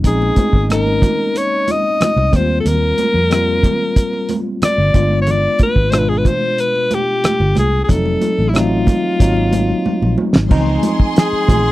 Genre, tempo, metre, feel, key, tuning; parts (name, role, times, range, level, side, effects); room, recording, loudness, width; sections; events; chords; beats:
lush 1970s-style soul; 92 BPM; 4/4; straight; A4 = 440 Hz
tine electric piano; accompaniment; 0.0-11.7 s; B2 to F4; -20 LUFS; left 1 dB; overdrive, fast stereo tremolo
vintage muted fingered electric bass; bass; 0.0-11.7 s; F1 to F2; -17 LUFS; equal
cloth-damped thuddy drum kit; drums; 0.0-11.6 s; crash cymbal, hi-hat, kick drum, rim click, snare drum; -14 LUFS; equal
congas; percussion; 0.0-11.6 s; -23 LUFS; right 4 dB
bright alto saxophone; melody; 0.1-11.7 s; Fb4 to Eb5; -17 LUFS; left 2 dB
warm studio string section; second line; 10.5-11.7 s; Ab4 to C6; -22 LUFS; right 2 dB
little or no reverb; dry, close 1970s-style studio recording; -13 LUFS; side -16 dB against mid
0.0-10.5 A section; 10.5-11.7 B section
drum fill 9.9-10.5
0.0 Bbm11; 2.3 Eb69; 4.9 G7b9; 7.9 F7b9; 9.2 Ab7; 10.5 Dbmaj7
| 0.04 0.69 1.35 2.00 | 2.65 3.31 3.96 4.62 | 5.27 5.93 6.58 7.24 | 7.89 8.54 9.20 9.85 | 10.51 11.16